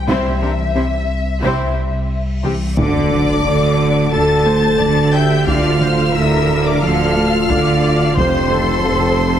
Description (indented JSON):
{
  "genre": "cinematic, hybrid orchestral and electronic film score",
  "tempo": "89 BPM",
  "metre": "4/4",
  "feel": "straight",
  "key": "D minor",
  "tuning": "A4 = 440 Hz",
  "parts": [
    { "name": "rich symphonic violin section", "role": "melody", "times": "0.0-9.4 s", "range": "E5 to A6", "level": "-23 LUFS", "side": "left 3 dB", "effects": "none" },
    { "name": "warm sub bass", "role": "bass", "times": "0.0-9.4 s", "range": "D1 to C2", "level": "-25 LUFS", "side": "equal", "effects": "none" },
    { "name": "rich studio violin section", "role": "second line", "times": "0.1-9.4 s", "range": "C4 to A5", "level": "-23 LUFS", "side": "left 3 dB", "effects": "none" },
    { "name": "clear symphonic viola section", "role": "accompaniment", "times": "0.1-9.4 s", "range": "G3 to E5", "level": "-23 LUFS", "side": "equal", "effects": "none" },
    { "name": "harp-like synth pluck", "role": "arpeggios", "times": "0.1-9.4 s", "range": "C3 to F4", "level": "-23 LUFS", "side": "right 1 dB", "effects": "chorus, digital delay" },
    { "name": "clear symphonic double bass section", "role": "bass", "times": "0.1-9.4 s", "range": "F1 to D2", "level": "-22 LUFS", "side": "right 3 dB", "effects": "none" },
    { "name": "rich symphonic cello section", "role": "bass", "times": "0.1-9.4 s", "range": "F2 to D3", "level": "-22 LUFS", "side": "right 2 dB", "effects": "none" },
    { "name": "taiko ensemble", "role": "drums", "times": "0.1-8.8 s", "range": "none", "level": "-24 LUFS", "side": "equal", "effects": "none" },
    { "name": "reverse cymbal and sub drop", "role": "sound effects", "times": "2.4-5.5 s", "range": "none", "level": "-27 LUFS", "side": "left 1 dB", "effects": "none" },
    { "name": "mellow French horn section", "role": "sustained chords", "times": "2.8-9.4 s", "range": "C4 to A4", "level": "-20 LUFS", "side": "left 1 dB", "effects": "none" },
    { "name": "mellow tuba", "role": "bass", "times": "2.8-9.4 s", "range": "F1 to D2", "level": "-21 LUFS", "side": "right 2 dB", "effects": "none" }
  ],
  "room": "wet scoring stage reverb, RT60 1.9 s",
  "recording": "heavily compressed radio sound",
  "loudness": "-13 LUFS",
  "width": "side -9 dB against mid",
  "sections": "0.0-2.8 A section; 2.8-9.4 B section",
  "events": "reverse cymbal 2.4-2.8; impact 2.8-5.5",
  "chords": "0.0 C; 2.8 Dm; 8.2 F"
}